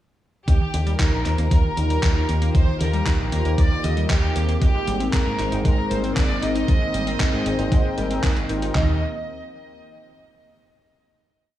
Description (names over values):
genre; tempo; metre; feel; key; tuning
italo disco; 116 BPM; 4/4; straight; Eb major; A4 = 442 Hz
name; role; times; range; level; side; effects
warm studio violin section; melody; 0.5-9.0 s; G4 to Eb5; -28 LUFS; equal; digital delay
lush unison pad; sustained chords; 1.4-9.0 s; Eb3 to G5; -30 LUFS; right 1 dB; chorus
analog pluck; arpeggios; 0.5-9.0 s; D3 to Ab4; -31 LUFS; right 2 dB; chorus, digital delay
fingered electric bass with an envelope filter; bass; 0.5-9.0 s; Ab1 to Ab2; -24 LUFS; equal; none
dusty soul sampler-style drum kit; drums; 0.5-8.9 s; handclaps, kick drum, toms; -19 LUFS; equal; none
dusty soul sampler-style drum kit; drums; 0.5-8.7 s; handclaps, hi-hat; -30 LUFS; equal; gated reverb
mellow synth brass; stabs; 0.7-8.9 s; C4 to C5; -30 LUFS; left 3 dB; chorus, phaser
room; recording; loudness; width
light reverb; studio reverb; -18 LUFS; side -13 dB against mid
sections
0.5-8.8 verse; 8.8-10.8 final chord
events
filter sweep on analog polysynth 0.5-8.8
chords
0.5 Ebadd9; 4.6 Abadd9; 8.8 Ebadd9